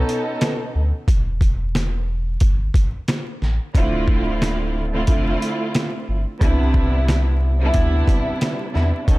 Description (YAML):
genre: hip hop, boom-bap hip-hop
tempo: 90 BPM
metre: 4/4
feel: swing 60% on 16ths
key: unclear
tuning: A4 = 441 Hz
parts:
  - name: dark studio string section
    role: accompaniment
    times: 0.0-9.2 s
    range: B2 to A4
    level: -23 LUFS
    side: right 1 dB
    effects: high-pass filter, low-pass filter
  - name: sub bass with octave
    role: bass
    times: 0.0-9.2 s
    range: D1 to E2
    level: -20 LUFS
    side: equal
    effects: none
  - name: trip hop sampler-style drum kit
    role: drums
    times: 0.1-9.2 s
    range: hi-hat, kick drum, snare drum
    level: -19 LUFS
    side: equal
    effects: none
room: digital ambience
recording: vinyl crackle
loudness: -17 LUFS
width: side -20 dB against mid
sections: 0.0-9.2 A section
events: none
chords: 0.0 B7; 1.1 Em; 3.7 Dm7; 6.4 Cmaj7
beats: 0.41 | 1.08 1.75 2.41 3.08 | 3.75 4.41 5.08 5.75 | 6.41 7.08 7.75 8.41 | 9.08